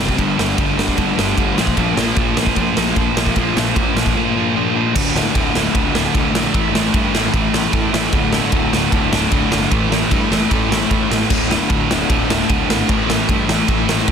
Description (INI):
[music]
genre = punk rock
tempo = 151 BPM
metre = 4/4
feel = straight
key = unclear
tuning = A4 = 435 Hz
[part]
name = crunchy overdriven guitar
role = riff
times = 0.0-14.1 s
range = D2 to C4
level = -21 LUFS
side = left 12 dB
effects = none
[part]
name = distorted electric guitar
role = riff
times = 0.0-14.1 s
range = D2 to C4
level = -19 LUFS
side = right 14 dB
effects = distortion
[part]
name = fuzz picked electric bass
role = bass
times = 0.0-14.1 s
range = D1 to A2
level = -24 LUFS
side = equal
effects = overdrive
[part]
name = raw garage drum kit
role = drums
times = 0.0-14.1 s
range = crash cymbal, kick drum, ride cymbal, snare drum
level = -18 LUFS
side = equal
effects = none
[sound]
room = little or no reverb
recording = dense, heavily limited modern master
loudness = -14 LUFS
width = side -7 dB against mid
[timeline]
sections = 0.0-5.0 A section; 5.0-14.1 B section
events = none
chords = 0.2 G5; 1.6 Bb5; 5.0 D5; 6.5 A5; 8.1 D5; 9.7 A5; 11.3 D5; 12.9 A5